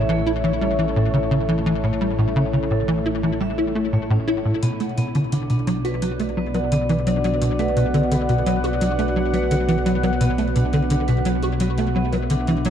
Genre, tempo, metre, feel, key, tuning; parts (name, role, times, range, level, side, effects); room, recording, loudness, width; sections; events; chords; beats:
ambient, sequencer-driven space music; 86 BPM; 4/4; straight; B minor; A4 = 441 Hz
sweeping resonant pad; sustained chords; 0.0-12.7 s; A2 to F#5; -24 LUFS; equal; chorus, phaser
vibraphone with medium hard mallets; arpeggios; 0.0-12.7 s; A3 to F#5; -30 LUFS; moving between left 4 dB and right 4 dB; auto-pan, ping-pong delay
tight sequencer bass; riff; 0.0-12.7 s; A2 to F#4; -21 LUFS; equal; ensemble chorus, ping-pong delay
warm sub bass; bass; 0.0-12.7 s; A1 to B1; -28 LUFS; equal
electronic hi-hat and bongos; percussion; 4.6-12.7 s; -37 LUFS; left 3 dB
moderate huge ambient reverb, RT60 8.2 s; dark, warm production; -18 LUFS; side -9 dB against mid
0.0-12.7 A section
0.0 A; 4.6 Bm
0.44 1.14 | 1.84 2.53 3.23 3.93 | 4.63 5.32 6.02 6.72 | 7.42 8.12 8.81 9.51 | 10.21 10.91 11.60 12.30